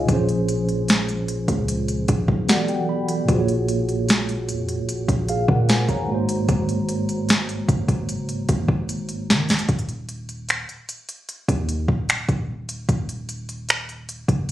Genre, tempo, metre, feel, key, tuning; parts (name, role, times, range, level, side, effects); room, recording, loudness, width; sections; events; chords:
contemporary R&B; 75 BPM; 4/4; straight; A4 = 440 Hz
mellow tine electric piano; accompaniment; 0.0-9.7 s; Ab2 to B5; -23 LUFS; right 1 dB; medium stereo tremolo
warm 808-style bass; bass; 0.0-14.5 s; Eb1 to Eb3; -27 LUFS; equal
smooth R&B drum kit; drums; 0.1-14.5 s; finger snaps, hi-hat, kick drum, snare drum; -20 LUFS; equal; overdrive
little or no reverb; recorded on a phone in the room, studio reverb, compression; -20 LUFS; side -13 dB against mid
0.0-9.7 A section; 9.7-14.5 B section
tine electric piano fill 2.1-3.3; drum fill 8.9-9.7
0.1 Bbm9; 2.5 Em11; 3.3 Ab13sus4; 6.1 Ab9; 9.7 N.C.